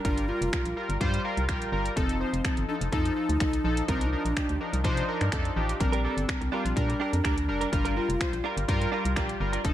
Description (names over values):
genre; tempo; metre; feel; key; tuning
dance-pop; 125 BPM; 4/4; straight; unclear; A4 = 438 Hz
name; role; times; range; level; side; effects
breathy bass ocarina; melody; 0.0-9.7 s; C4 to F4; -32 LUFS; equal; digital delay
warm analog keys; accompaniment; 0.0-9.7 s; F3 to Bb5; -30 LUFS; left 2 dB; chorus, sidechain pumping
organ-like FM bass; bass; 0.0-9.7 s; F1 to C3; -30 LUFS; equal; sidechain pumping
pop drum kit; drums; 0.0-9.7 s; finger snaps, hi-hat, kick drum; -30 LUFS; equal; none
direct-recorded clean electric guitar; riff; 5.8-9.7 s; D4 to Bb4; -34 LUFS; right 9 dB; lush chorus
room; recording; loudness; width
little or no reverb; none; -25 LUFS; side -12 dB against mid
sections
0.0-9.7 A section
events
synth keys fill 1.0-2.0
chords
0.0 Gm7; 2.0 F7; 3.9 Cm11; 5.8 Bb6; 7.7 Gm7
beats
| 0.04 0.53 1.00 1.49 | 1.97 2.44 2.92 3.40 | 3.88 4.37 4.84 5.33 | 5.80 6.29 6.76 7.25 | 7.72 8.21 8.69 9.16 | 9.64